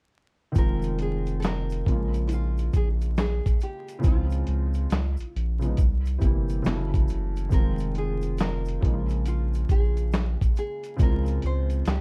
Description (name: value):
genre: lo-fi hip hop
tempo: 69 BPM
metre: 4/4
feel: swing 63% on 16ths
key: F minor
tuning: A4 = 437 Hz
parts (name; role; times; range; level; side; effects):
- felt-muted upright piano; accompaniment; 0.5-11.9 s; C3 to F4; -34 LUFS; equal; cassette tape
- nylon-string guitar; melody; 0.6-12.0 s; E4 to C5; -38 LUFS; equal; none
- soft dub sub bass; bass; 0.6-12.0 s; F1 to Db2; -29 LUFS; equal; none
- dusty soul sampler-style drum kit; drums; 0.6-12.0 s; handclaps, hi-hat, kick drum, snare drum; -26 LUFS; equal; none
- egg shaker; percussion; 0.6-12.0 s; none; -61 LUFS; equal; none
room: little or no reverb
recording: vinyl crackle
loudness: -25 LUFS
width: mono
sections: 0.6-12.0 A section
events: none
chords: 0.6 Fm7; 1.9 Bbm7; 4.0 Dbmaj7; 4.9 Db9; 5.8 C7; 6.6 Gbm7; 7.5 Fm7; 8.8 Bbm7; 11.0 Dbmaj7